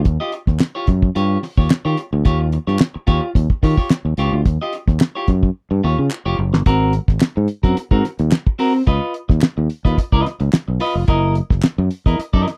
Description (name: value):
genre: funk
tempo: 109 BPM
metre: 4/4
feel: straight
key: Eb mixolydian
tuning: A4 = 440 Hz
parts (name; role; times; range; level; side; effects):
- overdriven fingered electric bass; bass; 0.0-12.4 s; F1 to Eb3; -20 LUFS; equal; none
- cloth-damped thuddy drum kit; drums; 0.0-12.6 s; hi-hat, kick drum, snare drum; -17 LUFS; equal; none
- clean electric guitar; accompaniment; 0.1-12.5 s; C4 to Eb5; -24 LUFS; equal; none
- group handclap; percussion; 0.6-11.8 s; none; -33 LUFS; equal; none
room: little or no reverb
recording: dry, close 1970s-style studio recording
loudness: -18 LUFS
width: mono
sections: 0.0-6.7 A section; 6.7-12.6 B section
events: drum fill 5.6-6.7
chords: 0.0 Eb9; 6.7 Ab9; 8.9 Db9; 11.1 Gb13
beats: | 0.06 0.60 1.16 1.70 | 2.25 2.81 3.35 3.91 | 4.46 5.01 5.56 6.11 | 6.66 7.21 7.77 8.32 | 8.87 9.42 9.97 10.53 | 11.08 11.63 12.19